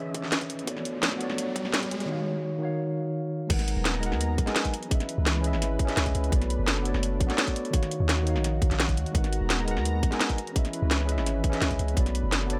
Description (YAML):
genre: liquid drum and bass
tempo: 170 BPM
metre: 4/4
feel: straight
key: G# minor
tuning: A4 = 440 Hz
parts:
  - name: tine electric piano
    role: accompaniment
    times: 0.0-12.6 s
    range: D#3 to G#5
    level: -34 LUFS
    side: equal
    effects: tape echo
  - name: lush unison pad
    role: sustained chords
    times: 0.0-12.6 s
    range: E3 to D#6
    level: -39 LUFS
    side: equal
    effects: chorus, sidechain pumping
  - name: riser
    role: sound effects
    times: 0.0-2.1 s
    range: none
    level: -39 LUFS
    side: equal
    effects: none
  - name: drum and bass drum kit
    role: drums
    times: 0.1-12.6 s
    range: crash cymbal, hi-hat, snare drum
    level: -31 LUFS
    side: equal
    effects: none
  - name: electronic kick drum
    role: drums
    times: 0.1-12.0 s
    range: none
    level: -29 LUFS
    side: equal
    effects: high-pass filter on kick, high-pass filter on room
  - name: long sustained 808-style bass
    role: bass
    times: 3.5-12.6 s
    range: D#1 to D#2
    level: -30 LUFS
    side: equal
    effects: none
room: light reverb, digital ambience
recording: none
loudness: -27 LUFS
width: mono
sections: 0.0-3.5 A section; 3.5-12.6 B section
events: build-up 0.0-3.5; riser 0.0-2.1; filter sweep on analog synth pad 0.0-3.5; drop 3.5-12.6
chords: 0.0 C#m9; 0.7 Bm9; 2.1 D#m9; 3.5 G#m9; 4.7 C#m9; 6.3 Bm9; 7.7 D#m9; 9.1 G#m9; 10.4 C#m9; 12.0 Bm9